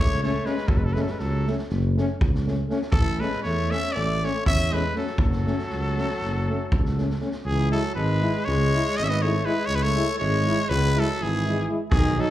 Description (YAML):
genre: balkan folk, Balkan brass band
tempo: 240 BPM (eighths)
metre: 9/8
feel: straight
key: F# minor, C# minor from 7.4 s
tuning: A4 = 440 Hz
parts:
  - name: growling trumpet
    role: melody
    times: 0.0-12.3 s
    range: G#4 to E5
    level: -28 LUFS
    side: left 1 dB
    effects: slapback echo
  - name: clear alto saxophone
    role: second line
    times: 0.0-12.3 s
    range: D#3 to C#4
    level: -31 LUFS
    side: left 2 dB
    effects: slapback echo
  - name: dark tuba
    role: bass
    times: 0.0-12.2 s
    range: F#1 to E2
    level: -24 LUFS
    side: equal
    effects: none
  - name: street-band drum kit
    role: percussion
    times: 0.1-7.4, 11.9-12.2 s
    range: kick drum, snare drum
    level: -26 LUFS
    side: equal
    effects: none
  - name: clear French horn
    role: accompaniment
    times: 0.2-12.3 s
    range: C#4 to E4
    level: -31 LUFS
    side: left 3 dB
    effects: slapback echo
  - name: mellow euphonium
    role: accompaniment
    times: 0.2-12.3 s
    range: F#3 to A3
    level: -33 LUFS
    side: right 3 dB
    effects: slapback echo
room: light reverb, studio ambience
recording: live gig heard through the venue's PA, club reverb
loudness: -21 LUFS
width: side -13 dB against mid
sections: 0.0-7.4 A section; 7.4-12.3 B section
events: none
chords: 0.0 F#m; 2.9 A; 5.2 F#m; 7.4 C#m